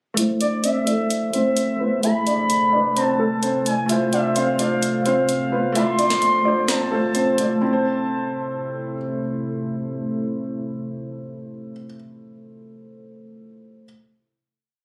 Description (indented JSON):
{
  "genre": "hip hop, trap",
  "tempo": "129 BPM",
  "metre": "4/4",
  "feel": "half-time",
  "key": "A minor",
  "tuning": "A4 = 444 Hz",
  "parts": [
    { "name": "dark grand piano", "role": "accompaniment", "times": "0.1-13.9 s", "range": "A3 to D5", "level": "-27 LUFS", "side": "equal", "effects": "low-pass filter" },
    { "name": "dark concert grand piano", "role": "melody", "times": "0.2-9.0 s", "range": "A3 to E5", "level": "-26 LUFS", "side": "equal", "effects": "low-pass filter, digital delay" },
    { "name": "deep dark ambient pad", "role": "sustained chords", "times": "2.2-11.8 s", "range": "C3 to E5", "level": "-33 LUFS", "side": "equal", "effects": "chorus, built-in reverb, low-pass filter" },
    { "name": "trap drum kit", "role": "drums", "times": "0.2-7.5 s", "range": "hi-hat, snare drum", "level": "-29 LUFS", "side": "equal", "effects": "none" },
    { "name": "gliding portamento lead", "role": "second line", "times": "0.4-9.0 s", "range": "D5 to C6", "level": "-26 LUFS", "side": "equal", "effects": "chorus, phaser, digital delay" }
  ],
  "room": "light reverb, studio ambience",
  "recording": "recorded on a phone in the room, club reverb",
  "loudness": "-21 LUFS",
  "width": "mono",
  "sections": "0.2-7.6 breakdown; 7.6-11.3 final chord",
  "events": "filter sweep 0.2-7.6",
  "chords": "0.2 Am; 3.9 F; 7.6 Am"
}